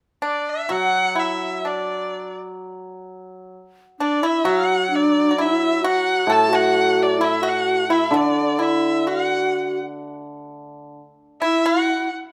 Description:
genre	chinese traditional, Chinese chamber ensemble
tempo	65 BPM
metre	2/4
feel	rubato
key	unclear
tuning	A4 = 440 Hz
part	rich erhu	melody	0.2-12.1 s	D5 to A5	-24 LUFS	equal	none
part	pipa	second line	0.2-12.1 s	D4 to A4	-28 LUFS	equal	none
part	hammered dulcimer	accompaniment	0.7-11.0 s	A2 to F#3	-28 LUFS	equal	none
part	breathy mellow low xiao	second line	4.0-12.1 s	D4 to A4	-23 LUFS	equal	none
room	moderate recital hall reverb, RT60 1.6 s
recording	close, detailed microphones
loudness	-20 LUFS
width	mono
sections	0.0-2.6 A section; 2.6-12.3 B section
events	none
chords	none

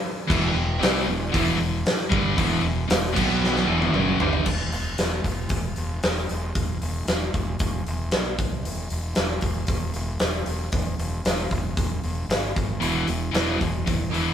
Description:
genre	hard rock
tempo	115 BPM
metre	4/4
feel	straight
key	E minor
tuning	A4 = 440 Hz
part	high-gain distorted guitar	riff	0.3-4.5, 12.8-14.3 s	E2 to C4	-26 LUFS	left 6 dB	distortion
part	overdriven semi-hollow guitar	riff	0.3-4.5, 12.8-14.3 s	E2 to C4	-26 LUFS	right 4 dB	none
part	fuzz fingered electric bass	bass	0.3-14.3 s	E1 to C2	-28 LUFS	equal	overdrive
part	big rock drum kit	drums	0.3-14.3 s	crash cymbal, hi-hat, kick drum, snare drum, toms	-25 LUFS	equal	none
room	moderate studio reverb, RT60 0.5 s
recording	band playing live in one room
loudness	-22 LUFS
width	side -9 dB against mid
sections	0.0-4.5 A section; 4.5-14.3 B section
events	drum fill 3.4-4.5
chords	0.0 Em; 3.2 B5; 3.7 Em; 4.5 E5; 8.4 N.C.; 12.8 E5

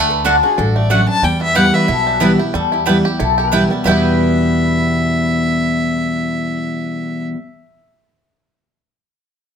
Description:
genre	bluegrass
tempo	183 BPM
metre	4/4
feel	swing 56% on 8ths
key	E minor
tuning	A4 = 439 Hz
part	bluegrass banjo	melody	0.0-7.3 s	G3 to G4	-23 LUFS	right 6 dB	plate reverb
part	lap resonator guitar	second line	0.0-7.3 s	F#4 to B4	-20 LUFS	left 8 dB	none
part	picked steel-string acoustic guitar	accompaniment	0.0-7.4 s	E2 to F#4	-17 LUFS	left 1 dB	none
part	upright bass	bass	0.0-7.2 s	A1 to E2	-22 LUFS	equal	none
part	mandolin	stabs	0.2-7.4 s	A3 to G5	-19 LUFS	right 4 dB	none
part	dark fiddle	melody	0.4-7.2 s	G#4 to A5	-20 LUFS	left 1 dB	plate reverb
room	moderate studio reverb, RT60 0.7 s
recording	close, detailed microphones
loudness	-13 LUFS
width	side -7 dB against mid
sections	0.0-2.5 A section; 2.5-3.9 B section; 3.9-6.5 C section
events	none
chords	0.0 D; 1.2 Em

